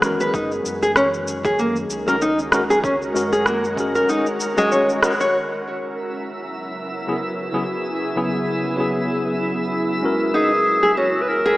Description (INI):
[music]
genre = organic downtempo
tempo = 96 BPM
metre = 4/4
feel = swing 55% on 16ths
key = C# dorian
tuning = A4 = 440 Hz
[part]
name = tine electric piano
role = accompaniment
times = 0.0-11.6 s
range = C#3 to D#5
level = -24 LUFS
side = left 1 dB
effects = overdrive, fast stereo tremolo, sidechain pumping, digital delay
[part]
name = ethereal airy pad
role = sustained chords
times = 0.0-11.6 s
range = C#3 to A#4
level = -26 LUFS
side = equal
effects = ensemble chorus, built-in reverb, phaser, sidechain pumping
[part]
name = warm sub bass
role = bass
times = 0.0-4.1 s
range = G#1 to F#2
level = -36 LUFS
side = equal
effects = sidechain pumping
[part]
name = electronic rim click and shaker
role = drums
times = 0.0-5.3 s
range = none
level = -23 LUFS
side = equal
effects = none
[part]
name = nylon-string guitar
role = arpeggios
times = 0.2-5.3, 10.3-11.6 s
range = G#3 to C#5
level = -20 LUFS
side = equal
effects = digital delay
[part]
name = electronic kick drum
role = drums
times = 0.3-3.9 s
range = none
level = -31 LUFS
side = equal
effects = none
[part]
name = twinkling granular texture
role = texture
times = 5.7-11.6 s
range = E4 to E6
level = -28 LUFS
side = equal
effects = built-in reverb
[part]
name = warm clarinet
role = melody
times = 10.3-11.6 s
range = F#4 to B4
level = -17 LUFS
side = equal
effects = none
[sound]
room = wet echo chamber reverb, RT60 2.1 s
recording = small speaker sound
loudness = -18 LUFS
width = side -18 dB against mid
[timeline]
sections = 0.0-5.3 A section; 5.3-11.6 B section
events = band accent 5.0-5.3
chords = 0.3 F#; 5.3 C#m; 10.3 F#7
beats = | 0.34 0.97 1.59 2.22 | 2.84 3.47 4.09 4.72 | 5.34 5.97 6.59 7.22 | 7.84 8.47 9.09 9.72 | 10.34 10.97